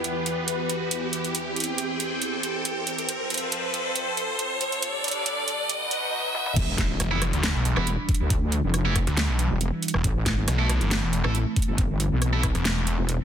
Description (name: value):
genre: heavy wobble dubstep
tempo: 138 BPM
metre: 4/4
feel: swing 53% on 16ths, half-time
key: E phrygian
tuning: A4 = 440 Hz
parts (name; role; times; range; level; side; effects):
- lush unison pad; sustained chords; 0.0-13.2 s; E2 to G5; -30 LUFS; equal; chorus, phaser, sidechain pumping
- dubstep drum kit; drums; 0.0-13.2 s; crash cymbal, hi-hat, rim click, snare drum, toms; -28 LUFS; right 2 dB; high-pass filter on hats, soft clipping on snare, high-pass filter on snare, high-pass filter on toms, high-pass filter on cymbals
- riser and impact; sound effects; 0.0-8.3 s; none; -30 LUFS; equal; none
- wobble bass; bass; 6.6-13.2 s; E1 to D2; -25 LUFS; equal; chorus, overdrive
- electronic kick drum; drums; 6.6-12.5 s; none; -25 LUFS; equal; none
- snarling distorted saw bass; bass; 7.0-13.0 s; E1 to D2; -24 LUFS; equal; overdrive
- tight distorted guitar; stabs; 7.1-12.4 s; E3 to A4; -32 LUFS; right 3 dB; distortion, dub echo
room: light reverb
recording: dense, heavily limited modern master, high-pass filter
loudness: -23 LUFS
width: side -9 dB against mid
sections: 0.0-6.6 A section; 6.6-13.2 B section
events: build-up 0.0-6.6; riser 0.0-6.6; drum fill 6.3; drop 6.6-13.2; impact 6.6-8.3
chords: 0.0 Em; 1.3 C/E; 3.1 F; 4.8 Gsus2; 5.7 B; 6.6 Em7; 10.0 Am